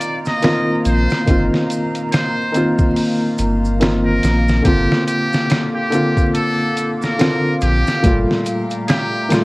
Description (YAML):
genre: trip hop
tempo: 71 BPM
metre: 4/4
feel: swing 59% on 16ths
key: unclear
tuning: A4 = 439 Hz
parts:
  - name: trumpet with metal mute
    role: melody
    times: 0.0-9.4 s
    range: G4 to Eb5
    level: -22 LUFS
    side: equal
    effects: tape echo
  - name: felt-muted upright piano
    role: accompaniment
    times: 0.0-9.4 s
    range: Bb2 to F4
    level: -18 LUFS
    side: equal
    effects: harmonic tremolo
  - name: dark analog pad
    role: sustained chords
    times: 0.0-9.4 s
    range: A3 to D6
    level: -24 LUFS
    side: equal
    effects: chorus, vintage 12-bit sampler grit
  - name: trip hop sampler-style drum kit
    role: drums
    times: 0.0-9.4 s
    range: hi-hat, kick drum, snare drum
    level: -19 LUFS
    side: equal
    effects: none
  - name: maracas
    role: percussion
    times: 0.0-9.4 s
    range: none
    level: -38 LUFS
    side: right 3 dB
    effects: none
  - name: warm sub bass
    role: bass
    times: 0.9-8.3 s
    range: G1 to Bb1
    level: -18 LUFS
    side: equal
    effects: tube saturation
room: light reverb, small room ambience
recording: worn, warbling old tape, cassette tape, vinyl crackle, warbly pitch drift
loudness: -14 LUFS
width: side -22 dB against mid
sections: 0.0-9.4 A section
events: none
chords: 0.0 F7sus4/G; 4.7 C9sus4/G; 8.0 Gm9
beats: 0.43 | 1.27 2.12 2.96 3.81 | 4.65 5.50 6.34 7.19 | 8.03 8.88